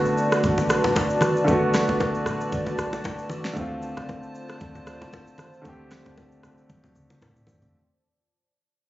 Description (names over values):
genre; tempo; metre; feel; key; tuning
amapiano; 115 BPM; 4/4; swing 55% on 16ths; unclear; A4 = 440 Hz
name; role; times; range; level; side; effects
warm baby grand piano; accompaniment; 0.0-7.8 s; D3 to G4; -25 LUFS; equal; none
hollow soft pad; sustained chords; 0.0-7.7 s; F4 to A5; -28 LUFS; equal; chorus, sidechain pumping
deep log drum bass; bass; 0.0-7.7 s; A1 to D2; -36 LUFS; equal; none
smooth R&B drum kit; drums; 0.1-7.7 s; kick drum, rim click, shaker, snare drum, toms; -28 LUFS; equal; none
congas and bongos; percussion; 0.4-7.6 s; none; -30 LUFS; left 1 dB; none
room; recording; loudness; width
light reverb; recorded on a phone in the room, studio reverb, nothing above 7.7 kHz; -21 LUFS; side -15 dB against mid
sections
0.0-7.7 A section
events
fade-out 0.0-7.7; drum fill 6.7-7.7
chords
0.0 Bm7; 3.6 Dm7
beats
0.43 0.96 | 1.48 2.00 2.52 3.04 | 3.57 4.09 4.61 5.13 | 5.65 6.17 6.70 7.22